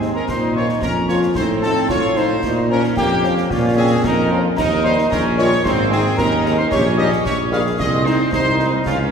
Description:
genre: military-style march for wind band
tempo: 112 BPM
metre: 2/4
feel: straight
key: Ab major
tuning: A4 = 444 Hz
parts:
  - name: dark trumpet section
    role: melody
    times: 0.0-9.0 s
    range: Eb4 to F5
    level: -23 LUFS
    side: left 1 dB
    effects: none
  - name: mellow hollow piccolo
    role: second line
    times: 0.0-9.1 s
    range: Eb5 to F6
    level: -26 LUFS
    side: left 2 dB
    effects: none
  - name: warm woodwind section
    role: second line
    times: 0.0-9.0 s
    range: G3 to Ab4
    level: -24 LUFS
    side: equal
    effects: none
  - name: mellow French horn section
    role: accompaniment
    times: 0.0-8.7 s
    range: Eb3 to Eb4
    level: -26 LUFS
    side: left 2 dB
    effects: none
  - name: bright trombone section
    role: sustained chords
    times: 0.0-9.1 s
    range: Bb3 to F4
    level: -23 LUFS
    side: right 2 dB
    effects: none
  - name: mellow tuba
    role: bass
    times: 0.0-9.1 s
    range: Ab1 to Bb2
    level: -19 LUFS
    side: right 1 dB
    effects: none
  - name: concert snare drum, clash cymbals and concert bass drum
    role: drums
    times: 0.0-9.1 s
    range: none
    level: -28 LUFS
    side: equal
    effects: none
room: wet concert hall reverb, RT60 2.5 s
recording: recorded in a church or concert hall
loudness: -15 LUFS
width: side -6 dB against mid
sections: 0.0-9.1 A section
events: none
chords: 0.3 Bbm; 1.4 F7/A; 2.4 Bbm; 4.6 Eb; 5.7 Ab; 6.7 Eb7/Bb; 7.8 Ab/C

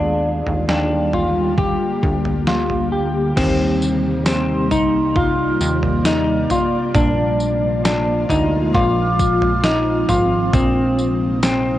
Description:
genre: dream pop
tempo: 67 BPM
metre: 4/4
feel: straight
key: Eb major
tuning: A4 = 445 Hz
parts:
  - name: ethereal airy pad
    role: sustained chords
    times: 0.0-11.8 s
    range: C3 to D5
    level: -21 LUFS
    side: equal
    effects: ensemble chorus, built-in reverb
  - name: semi-hollow electric guitar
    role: arpeggios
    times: 0.0-11.8 s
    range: C4 to G4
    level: -20 LUFS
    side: left 1 dB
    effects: analog chorus, analog delay
  - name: plucky analog bass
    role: bass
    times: 0.0-11.8 s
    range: Ab1 to Eb2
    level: -22 LUFS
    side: equal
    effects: none
  - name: vibraphone with soft mallets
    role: texture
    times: 0.0-11.8 s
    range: F5 to F6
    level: -27 LUFS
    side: right 1 dB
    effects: analog delay
  - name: detuned 8-bit digital drum machine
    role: drums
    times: 0.5-11.6 s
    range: crash cymbal, kick drum, snare drum, tambourine, toms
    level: -22 LUFS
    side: right 1 dB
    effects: cassette tape
room: moderate spring reverb, RT60 2.6 s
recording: home recording on cassette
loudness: -15 LUFS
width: side -13 dB against mid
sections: 0.0-3.4 A section; 3.4-11.8 B section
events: none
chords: 0.0 Bb6; 3.4 Eb6; 7.0 Bb7; 10.5 Eb6

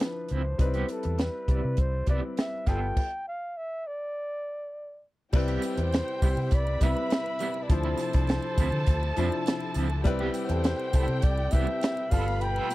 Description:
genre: lush 1970s-style soul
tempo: 102 BPM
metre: 4/4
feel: straight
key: C major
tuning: A4 = 440 Hz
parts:
  - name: breathy flugelhorn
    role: melody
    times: 0.0-12.7 s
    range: A4 to G5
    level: -33 LUFS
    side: equal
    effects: none
  - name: warm grand piano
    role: accompaniment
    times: 0.0-12.7 s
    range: F3 to D5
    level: -33 LUFS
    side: left 2 dB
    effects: none
  - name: electric guitar at the edge of break-up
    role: riff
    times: 0.0-12.7 s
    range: F3 to A4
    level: -36 LUFS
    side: right 6 dB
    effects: tremolo
  - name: compact cocktail drum kit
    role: drums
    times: 0.0-12.7 s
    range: crash cymbal, hi-hat, kick drum, snare drum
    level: -25 LUFS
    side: equal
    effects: none
  - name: vintage muted fingered electric bass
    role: bass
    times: 0.3-12.6 s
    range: G1 to D3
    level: -28 LUFS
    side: equal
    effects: none
  - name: dark studio violin section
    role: second line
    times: 5.3-12.7 s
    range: G4 to B5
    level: -37 LUFS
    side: equal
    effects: slapback echo
  - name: warm studio string section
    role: sustained chords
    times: 5.3-12.7 s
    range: B2 to F4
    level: -41 LUFS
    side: left 1 dB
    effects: none
  - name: triangle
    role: percussion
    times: 5.3-12.7 s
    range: none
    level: -49 LUFS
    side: right 6 dB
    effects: none
room: little or no reverb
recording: dry, close 1970s-style studio recording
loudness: -25 LUFS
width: side -17 dB against mid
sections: 0.0-5.3 A section; 5.3-12.7 B section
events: stop 3.0-5.3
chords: 0.0 Dm9; 0.6 Cmaj7; 2.7 G9; 5.3 Cmaj7; 7.7 Dm9; 10.1 Cmaj7; 12.1 G9

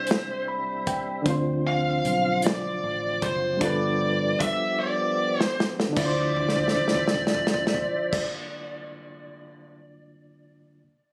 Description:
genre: slow six-eight R&B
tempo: 51 BPM (dotted quarters)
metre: 6/8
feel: straight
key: D dorian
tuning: A4 = 441 Hz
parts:
  - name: bluesy overdriven lead guitar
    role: melody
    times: 0.0-8.2 s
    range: C5 to F5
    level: -29 LUFS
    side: equal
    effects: distortion, tape echo
  - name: bright reed electric piano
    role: accompaniment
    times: 0.0-10.8 s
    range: C3 to B5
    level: -33 LUFS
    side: equal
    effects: fast tremolo
  - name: percussive tonewheel organ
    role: sustained chords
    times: 0.0-8.2 s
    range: F3 to E5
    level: -35 LUFS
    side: equal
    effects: chorus vibrato, slow rotary speaker
  - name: warm soul drum kit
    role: drums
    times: 0.1-9.8 s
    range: crash cymbal, hi-hat, kick drum, snare drum, toms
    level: -29 LUFS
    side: equal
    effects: none
  - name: vintage muted fingered electric bass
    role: bass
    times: 1.3-8.2 s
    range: F#1 to D2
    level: -34 LUFS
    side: equal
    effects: none
room: small room ambience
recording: recorded on a phone in the room, studio reverb, compression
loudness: -25 LUFS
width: mono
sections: 0.0-6.0 A section; 6.0-8.3 B section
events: reed electric piano fill 0.1-1.3; drum fill 4.8-6.0, 6.4-8.1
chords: 0.0 C; 1.3 Dm7; 3.6 G7; 6.0 Dm9

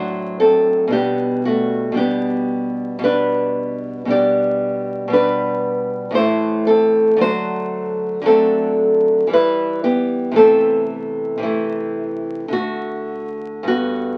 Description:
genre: classical, baroque-style dance for nylon-string guitar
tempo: 51-59 BPM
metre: 3/4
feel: rubato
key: unclear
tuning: A4 = 440 Hz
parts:
  - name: nylon-string guitar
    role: solo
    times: 0.0-14.2 s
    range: G2 to D5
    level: -18 LUFS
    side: equal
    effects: none
room: wet small room reverb, RT60 0.5 s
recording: very old 78 rpm record, vinyl crackle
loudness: -18 LUFS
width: mono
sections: 0.0-14.2 A section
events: none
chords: 0.0 D7/A; 0.9 G/B; 6.2 Am; 7.2 D7; 9.3 Em; 10.4 Am/C; 12.5 D

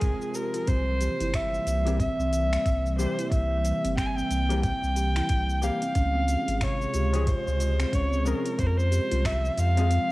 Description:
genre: organic downtempo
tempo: 91 BPM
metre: 4/4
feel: swing 60% on 16ths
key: C phrygian dominant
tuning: A4 = 441 Hz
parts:
  - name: rich kamancheh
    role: melody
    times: 0.0-10.1 s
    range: Ab4 to Ab5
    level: -29 LUFS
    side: equal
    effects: cassette tape, tape echo
  - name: felt-muted upright piano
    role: accompaniment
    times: 0.0-9.9 s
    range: E3 to Bb4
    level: -36 LUFS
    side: left 6 dB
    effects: sidechain pumping, tape echo
  - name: warbly tape-like pad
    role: sustained chords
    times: 0.0-10.1 s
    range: C3 to Ab4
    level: -35 LUFS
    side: equal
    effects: chorus, built-in reverb, sidechain pumping
  - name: steel tongue drum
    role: arpeggios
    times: 0.0-10.1 s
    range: C3 to G4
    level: -33 LUFS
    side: right 1 dB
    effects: none
  - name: warm sub bass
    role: bass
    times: 0.0-10.0 s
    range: G1 to F2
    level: -26 LUFS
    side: equal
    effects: sidechain pumping
  - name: afro-pop drum kit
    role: drums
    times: 0.0-10.1 s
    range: cabasa, finger snaps, hi-hat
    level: -38 LUFS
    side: equal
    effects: studio reverb, cassette tape
  - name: electronic kick drum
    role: drums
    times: 0.0-9.4 s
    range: none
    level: -28 LUFS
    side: equal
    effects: studio reverb, cassette tape
room: light reverb, digital ambience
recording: home recording on cassette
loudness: -23 LUFS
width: side -19 dB against mid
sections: 0.0-10.1 A section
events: kick drops out 9.9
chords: 0.0 Fm; 0.7 C7; 6.0 Dbmaj7; 8.6 Fm

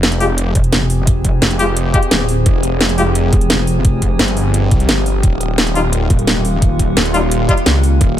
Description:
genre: dark technical drum and bass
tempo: 173 BPM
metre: 4/4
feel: straight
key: F minor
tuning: A4 = 435 Hz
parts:
  - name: metallic inharmonic drone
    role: sustained chords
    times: 0.5-8.2 s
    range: Eb3 to Ab4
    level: -21 LUFS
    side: left 1 dB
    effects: chorus, built-in reverb, sidechain pumping
  - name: snarling distorted saw bass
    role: bass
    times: 0.0-8.2 s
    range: Eb1 to C2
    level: -16 LUFS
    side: equal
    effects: tube saturation, sidechain pumping
  - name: drum and bass drum kit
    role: drums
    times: 0.0-8.1 s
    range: hi-hat, snare drum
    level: -17 LUFS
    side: equal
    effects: none
  - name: warm brass ensemble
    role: stabs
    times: 0.2-3.0, 5.8-7.5 s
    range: G3 to G4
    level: -19 LUFS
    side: left 3 dB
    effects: ping-pong delay
  - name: pulsing pluck wobble bass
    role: bass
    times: 0.6-8.0 s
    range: Eb1 to Db2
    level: -16 LUFS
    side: equal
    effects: chorus
  - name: electronic kick drum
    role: drums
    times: 0.6-8.1 s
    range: none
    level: -14 LUFS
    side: equal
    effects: none
room: light reverb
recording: none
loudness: -12 LUFS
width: side -11 dB against mid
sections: 0.0-8.2 A section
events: none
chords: 0.0 Fmadd9; 5.2 Ebadd9

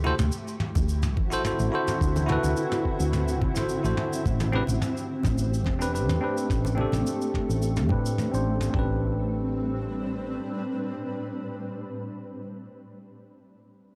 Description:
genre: sunset chillout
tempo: 107 BPM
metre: 4/4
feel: swing 53% on 16ths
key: A dorian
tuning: A4 = 440 Hz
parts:
  - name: bell-like tine electric piano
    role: accompaniment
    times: 0.0-12.5 s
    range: C4 to C5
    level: -33 LUFS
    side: equal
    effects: low-pass filter, analog delay
  - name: shimmering ambient pad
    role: sustained chords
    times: 0.0-11.7 s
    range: A2 to B4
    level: -34 LUFS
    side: equal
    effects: chorus, built-in reverb
  - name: woody fretless electric bass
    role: bass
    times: 0.0-10.4 s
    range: E1 to A2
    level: -29 LUFS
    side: equal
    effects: none
  - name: congas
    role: percussion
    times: 0.0-8.0 s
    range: none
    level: -37 LUFS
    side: equal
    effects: none
  - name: toms and cabasa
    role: drums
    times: 0.2-8.7 s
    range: none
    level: -36 LUFS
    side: equal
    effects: none
  - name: dusty soul sampler-style drum kit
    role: drums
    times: 0.8-8.9 s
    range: kick drum, toms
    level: -31 LUFS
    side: equal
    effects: none
room: studio reverb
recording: dry, gritty hardware recording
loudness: -27 LUFS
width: mono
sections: 0.0-8.7 A section; 8.7-11.0 B section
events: filter sweep on fretless electric bass 0.0-8.7; filter sweep on tine electric piano 0.0-8.7; filter sweep on ambient pad 0.0-8.7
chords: 0.0 D9; 4.3 Am11

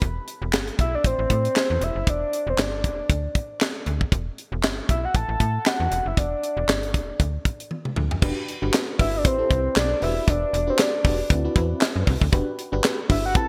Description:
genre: early-eighties boogie funk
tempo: 117 BPM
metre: 4/4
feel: swing 56% on 16ths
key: E minor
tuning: A4 = 441 Hz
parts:
  - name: soft octave-layered synth lead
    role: melody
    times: 0.0-13.5 s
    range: C5 to A5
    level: -28 LUFS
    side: equal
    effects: chorus
  - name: slap-like FM bass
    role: bass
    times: 0.0-13.5 s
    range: E1 to A2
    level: -29 LUFS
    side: equal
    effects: none
  - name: tight funk drum kit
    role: drums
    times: 0.0-13.5 s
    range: crash cymbal, handclaps, hi-hat, kick drum, snare drum, toms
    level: -25 LUFS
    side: equal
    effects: gated reverb
  - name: FM electric piano with tremolo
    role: accompaniment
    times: 8.2-13.5 s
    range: C4 to B4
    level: -31 LUFS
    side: equal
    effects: phaser
room: moderate plate reverb, RT60 2.3 s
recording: bright 1980s-style digital production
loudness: -23 LUFS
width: mono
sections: 0.0-8.2 A section; 8.2-13.5 B section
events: drum fill 7.7-8.2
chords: 0.0 Em; 1.0 Am; 1.8 Em7; 3.1 N.C.; 4.1 Em; 5.1 A5; 5.9 Em9; 7.2 N.C.; 8.2 Em9; 9.2 Am9; 10.0 Em9; 11.3 D13; 12.3 Em9

